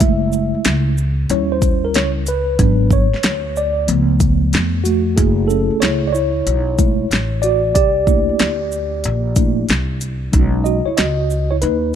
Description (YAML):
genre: hip hop, jazz-hop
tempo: 93 BPM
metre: 4/4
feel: swing 65% on 16ths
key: F# minor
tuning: A4 = 438 Hz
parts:
  - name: mellow tine electric piano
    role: accompaniment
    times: 0.0-12.0 s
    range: E#3 to E5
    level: -18 LUFS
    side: right 1 dB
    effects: medium stereo tremolo
  - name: upright bass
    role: bass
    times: 0.0-12.0 s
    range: F#1 to E#2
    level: -19 LUFS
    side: equal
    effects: none
  - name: deep house drum kit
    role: drums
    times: 0.0-11.8 s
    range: hi-hat, kick drum, shaker, snare drum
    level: -18 LUFS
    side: equal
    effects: none
room: digital ambience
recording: none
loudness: -14 LUFS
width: side -9 dB against mid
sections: 0.0-5.2 A section; 5.2-12.0 B section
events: tine electric piano solo 0.0-5.2, 5.2-12.0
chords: 0.0 F#m9; 1.3 D#7b9; 2.6 G#m7b5; 3.9 C#7b13; 5.2 F#m9; 7.8 C13; 10.3 B69